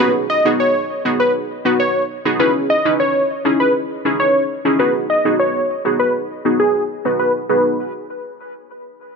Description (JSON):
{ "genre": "pop", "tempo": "100 BPM", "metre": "4/4", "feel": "straight", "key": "G# minor", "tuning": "A4 = 439 Hz", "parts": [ { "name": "plucky unison lead", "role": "melody", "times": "0.0-7.8 s", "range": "G#4 to D#5", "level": "-17 LUFS", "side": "equal", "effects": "low-pass filter, dub echo" }, { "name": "glassy wavetable pluck", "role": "accompaniment", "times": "0.0-7.8 s", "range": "B3 to B4", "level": "-18 LUFS", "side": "equal", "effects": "chorus, low-pass filter" } ], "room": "light reverb", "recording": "none", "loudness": "-14 LUFS", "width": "side -5 dB against mid", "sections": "0.0-7.5 A section; 7.5-9.2 B section", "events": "filter sweep 0.0-7.5", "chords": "0.0 G#m7; 2.4 C#madd9; 4.8 G#m7" }